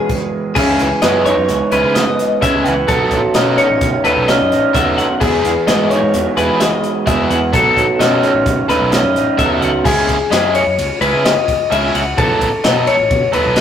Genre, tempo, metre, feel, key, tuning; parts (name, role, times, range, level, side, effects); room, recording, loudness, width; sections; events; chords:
math rock and midwest emo; 129 BPM; 5/4; straight; A4 = 442 Hz
electric guitar through a small old amp; accompaniment; 0.0-9.9 s; E2 to D#4; -16 LUFS; right 3 dB
twelve-string electric guitar; arpeggios; 0.0-13.6 s; G#4 to F#5; -16 LUFS; left 4 dB; spring reverb
crisp fusion drum kit; drums; 0.1-13.6 s; crash cymbal, hi-hat, kick drum, ride cymbal, snare drum; -20 LUFS; equal
overdriven electric guitar; riff; 0.6-13.6 s; C#3 to A4; -19 LUFS; right 2 dB
fuzz fingered electric bass; bass; 0.6-13.6 s; A1 to E3; -23 LUFS; equal; overdrive
moderate stone room reverb, RT60 1.3 s; rough rehearsal-room recording, tube saturation; -12 LUFS; side -9 dB against mid
0.6-9.9 A section; 9.9-13.6 B section
stop 0.1-0.6
0.0 E6; 0.6 C#m9; 2.9 B9; 5.2 Emaj7; 7.5 B9; 9.9 C#madd9; 12.2 B9